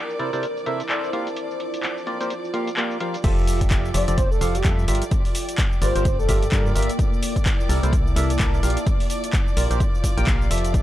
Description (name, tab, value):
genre	piano house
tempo	128 BPM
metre	4/4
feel	swing 59% on 16ths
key	unclear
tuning	A4 = 440 Hz
part	dark chamber violin section	sustained chords	0.0-10.8 s	D5 to D6	-35 LUFS	right 1 dB	sidechain pumping
part	deep dark ambient pad	texture	0.0-10.8 s	Bb3 to A5	-30 LUFS	right 1 dB	chorus, built-in reverb, sidechain pumping
part	punchy analog drum machine	drums	0.1-10.8 s	cabasa, crash cymbal, handclaps, hi-hat	-29 LUFS	left 1 dB	low-pass filter on hats, low-pass filter on perc, low-pass filter on snare, low-pass filter on cymbals, low-pass filter on room
part	percussive organ stab	riff	0.2-10.8 s	C3 to G5	-28 LUFS	right 1 dB	lush chorus, sidechain pumping, tape echo
part	organ-like FM bass	bass	3.2-10.8 s	F1 to G2	-22 LUFS	equal	sidechain pumping
part	electronic kick drum	drums	3.2-10.8 s	none	-21 LUFS	equal	none
part	breathy flute-like synth lead	melody	3.9-6.7 s	G4 to D5	-28 LUFS	equal	analog chorus, tape echo
room	little or no reverb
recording	dry, gritty hardware recording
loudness	-19 LUFS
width	side -14 dB against mid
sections	0.0-3.2 A section; 3.2-10.8 B section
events	drop 3.2-10.8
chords	0.0 C13; 1.1 Bb6; 3.2 Fmaj9; 4.9 Gm7; 7.0 C13; 8.6 Bb6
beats	0.43 0.90 | 1.36 1.83 2.30 2.77 | 3.24 3.71 4.18 4.65 | 5.12 5.58 6.05 6.52 | 6.99 7.46 7.93 8.40 | 8.87 9.33 9.80 10.27 | 10.74